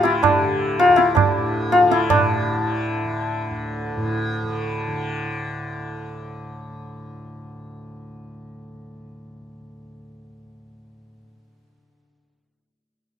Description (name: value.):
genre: indian classical, Hindustani.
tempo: 162 BPM.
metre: 4/4.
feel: straight.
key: unclear.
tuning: A4 = 440 Hz.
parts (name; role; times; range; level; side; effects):
santur; melody; 0.0-5.8 s; D4 to A4; -18 LUFS; left 2 dB; none.
tanpura; drone; 0.0-12.0 s; D2 to D3; -28 LUFS; equal; none.
tabla; percussion; 0.1-2.2 s; none; -21 LUFS; right 7 dB; none.
room: light reverb.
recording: minimal, uncompressed stereo recording.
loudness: -18 LUFS.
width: side -9 dB against mid.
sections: 0.0-2.1 A section; 2.1-5.1 B section.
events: none.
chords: none.